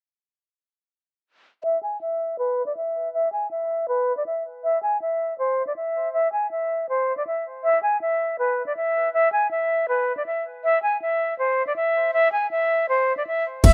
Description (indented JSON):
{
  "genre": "hip hop, trap",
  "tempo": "160 BPM",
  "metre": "4/4",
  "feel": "half-time",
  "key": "unclear",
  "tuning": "A4 = 440 Hz",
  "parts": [
    { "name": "breathy silver concert flute", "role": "melody", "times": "1.6-13.7 s", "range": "B4 to G#5", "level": "-24 LUFS", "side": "equal", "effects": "low-pass filter, digital delay" },
    { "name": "clean 808-style bass", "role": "bass", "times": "13.6-13.7 s", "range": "E1", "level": "-16 LUFS", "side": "equal", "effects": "none" },
    { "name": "trap drum kit", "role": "drums", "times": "13.6-13.7 s", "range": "crash cymbal, hi-hat, kick drum", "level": "-16 LUFS", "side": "equal", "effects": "none" }
  ],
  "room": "light reverb",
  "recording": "rough home demo mix",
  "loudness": "-24 LUFS",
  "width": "mono",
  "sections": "1.6-13.6 A section",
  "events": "filter sweep on flute 1.6-13.6",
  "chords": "none",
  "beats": "| 1.64 2.01 2.39 2.76 | 3.14 3.51 3.89 4.26 | 4.64 5.01 5.39 5.76 | 6.14 6.51 6.89 7.26 | 7.64 8.01 8.39 8.76 | 9.14 9.51 9.89 10.26 | 10.64 11.01 11.39 11.76 | 12.14 12.51 12.89 13.26 | 13.64"
}